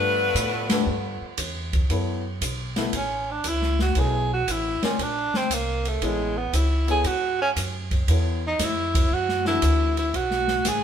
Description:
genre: jazz, big band swing.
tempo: 117 BPM.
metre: 4/4.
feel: swing 68% on 8ths.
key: F# minor.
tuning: A4 = 440 Hz.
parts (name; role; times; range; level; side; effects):
clear saxophone section; melody; 0.0-1.4 s; A3 to B4; -24 LUFS; left 4 dB; none.
muted trombone section; second line; 0.0-1.4 s; D3 to B3; -31 LUFS; right 3 dB; none.
warm baby grand piano; accompaniment; 0.0-10.1 s; E3 to E5; -30 LUFS; left 4 dB; none.
upright bass; bass; 0.0-10.8 s; A1 to A2; -26 LUFS; equal; none.
open jazz drum kit; drums; 0.4-10.8 s; hi-hat, kick drum, ride cymbal, snare drum; -27 LUFS; equal; none.
breathy tenor saxophone; melody; 3.0-10.8 s; G#3 to G#4; -24 LUFS; right 2 dB; none.
room: moderate stone room reverb, RT60 1.0 s.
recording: band playing live in one room.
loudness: -21 LUFS.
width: side -8 dB against mid.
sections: 0.0-1.9 A section; 1.9-10.8 B section.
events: tenor saxophone solo 1.9-10.8.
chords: 0.0 G13; 1.9 F#m7; 4.0 Bm7; 5.0 A#sus2; 6.0 Amaj7; 8.1 C#7alt/E; 9.1 Dadd9; 10.1 B5.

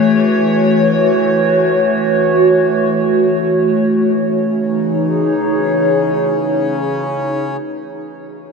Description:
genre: ambient.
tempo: free time.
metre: none.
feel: none.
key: C# minor.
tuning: A4 = 440 Hz.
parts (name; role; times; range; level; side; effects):
warbly tape-like pad; sustained chords; 0.0-7.5 s; E3 to C#5; -13 LUFS; equal; chorus, built-in reverb, phaser.
hand-pumped harmonium; drone; 0.0-7.6 s; C#3 to C#4; -27 LUFS; left 1 dB; stereo widening.
room: wet huge ambient reverb, RT60 7.3 s.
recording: in a vast, echoing space, nothing above 10.7 kHz.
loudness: -12 LUFS.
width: side -5 dB against mid.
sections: 0.0-4.1 A section; 4.1-6.7 B section.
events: none.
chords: 0.0 F#m7; 4.1 C#madd9.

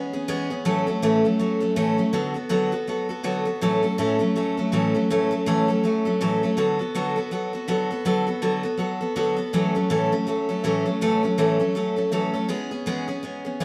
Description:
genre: rock.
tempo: 162 BPM.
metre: 4/4.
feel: swing 59% on 8ths.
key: A major.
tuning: A4 = 442 Hz.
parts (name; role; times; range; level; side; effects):
picked steel-string acoustic guitar; solo; 0.0-13.6 s; A2 to A4; -24 LUFS; equal; none.
room: moderate stone room reverb, RT60 1.1 s.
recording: band playing live in one room.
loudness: -23 LUFS.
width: mono.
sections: 0.7-13.6 A section.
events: none.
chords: 0.0 E6; 0.7 A6; 2.1 D6; 3.6 A6; 6.6 D6; 9.5 A6; 12.5 E6.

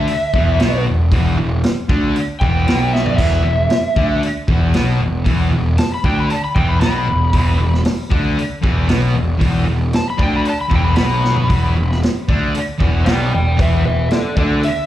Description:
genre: blues rock power trio and southern rock.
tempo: 115 BPM.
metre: 4/4.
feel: straight.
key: E minor.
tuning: A4 = 439 Hz.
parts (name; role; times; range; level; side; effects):
overdriven slide guitar; melody; 0.0-14.9 s; A4 to B5; -21 LUFS; equal; slapback echo, analog delay.
thick fuzz guitar; riff; 0.0-14.6 s; E2 to D4; -20 LUFS; equal; distortion, slapback echo.
fuzz picked electric bass; bass; 0.0-14.6 s; E1 to D2; -17 LUFS; equal; overdrive.
vintage drum kit; drums; 0.1-14.8 s; hi-hat, kick drum, snare drum, splash cymbal, toms; -19 LUFS; equal; none.
room: little or no reverb.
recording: live gig heard through the venue's PA, club reverb.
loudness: -14 LUFS.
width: side -13 dB against mid.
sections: 0.0-14.9 A section.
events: drum fill 2.9, 11.2.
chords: 0.0 E5.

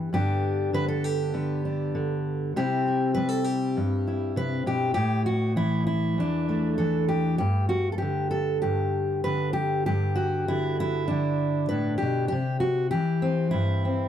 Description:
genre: folk, solo fingerstyle acoustic guitar.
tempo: 99 BPM.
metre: 4/4.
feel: straight.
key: G major.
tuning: A4 = 440 Hz.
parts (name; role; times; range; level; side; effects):
fingerpicked steel-string acoustic guitar; solo; 0.0-14.1 s; E2 to B4; -23 LUFS; equal; none.
room: light reverb.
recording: dry, close 1970s-style studio recording.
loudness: -23 LUFS.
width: side -10 dB against mid.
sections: 0.0-9.9 A section; 9.9-14.1 A section.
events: none.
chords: 0.1 G; 2.6 C; 5.0 A5; 7.4 G5; 9.9 G; 12.3 C.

